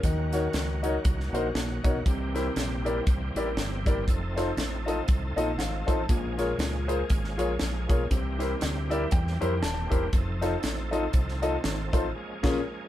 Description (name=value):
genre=uptempo gospel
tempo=119 BPM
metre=4/4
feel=swing 58% on 8ths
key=unclear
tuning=A4 = 443 Hz
part: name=warm concert grand piano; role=accompaniment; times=0.0-12.6 s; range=Bb2 to A5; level=-29 LUFS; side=left 2 dB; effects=none
part: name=bright tonewheel organ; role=sustained chords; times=0.0-12.9 s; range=Eb3 to A4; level=-37 LUFS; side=right 2 dB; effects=slow rotary speaker, overdrive, chorus vibrato
part: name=fingered electric bass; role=bass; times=0.0-12.6 s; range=Eb1 to F2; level=-31 LUFS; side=equal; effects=none
part: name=crisp fusion drum kit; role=drums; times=0.0-12.6 s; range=crash cymbal, hi-hat, kick drum, snare drum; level=-28 LUFS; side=equal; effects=none
room=light reverb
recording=band playing live in one room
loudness=-25 LUFS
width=side -13 dB against mid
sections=0.0-12.9 A section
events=grand piano fill 5.1-6.1, 8.6-10.1; band accent 12.1-12.9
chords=0.0 Ebm7; 2.1 C7; 4.1 F7; 6.1 Bbm7; 8.1 C7; 10.1 F7; 12.1 Bbm7